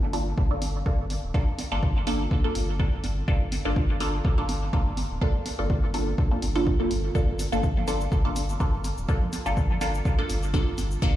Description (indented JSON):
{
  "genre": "dub techno",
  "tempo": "124 BPM",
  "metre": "4/4",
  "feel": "swing 54% on 16ths",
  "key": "G minor",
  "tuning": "A4 = 440 Hz",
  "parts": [
    { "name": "soft dub sub bass", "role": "bass", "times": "0.0-11.2 s", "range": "D1 to G1", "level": "-29 LUFS", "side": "equal", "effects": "tube saturation, sidechain pumping" },
    { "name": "filtered dub chord stab", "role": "stabs", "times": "0.1-11.2 s", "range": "Bb3 to A4", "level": "-29 LUFS", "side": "right 1 dB", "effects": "phaser, sidechain pumping, dub echo" },
    { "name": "electronic hi-hat and shaker", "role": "drums", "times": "0.1-11.1 s", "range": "none", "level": "-38 LUFS", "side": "left 1 dB", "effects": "none" },
    { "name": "congas", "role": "percussion", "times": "0.1-11.1 s", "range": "none", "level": "-38 LUFS", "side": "right 3 dB", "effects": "sidechain pumping on perc, dub echo" },
    { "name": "electronic kick drum", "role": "drums", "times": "0.4-11.1 s", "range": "none", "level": "-24 LUFS", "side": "equal", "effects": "none" }
  ],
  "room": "little or no reverb",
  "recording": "played on a big sound system in a bare room, large studio reverb",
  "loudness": "-23 LUFS",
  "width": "side -13 dB against mid",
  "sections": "0.0-11.2 A section",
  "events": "none",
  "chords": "0.0 Gm7",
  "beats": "0.38 0.86 | 1.34 1.83 2.31 2.80 | 3.28 3.76 4.25 4.73 | 5.21 5.70 6.18 6.67 | 7.15 7.63 8.12 8.60 | 9.09 9.57 10.05 10.54 | 11.02"
}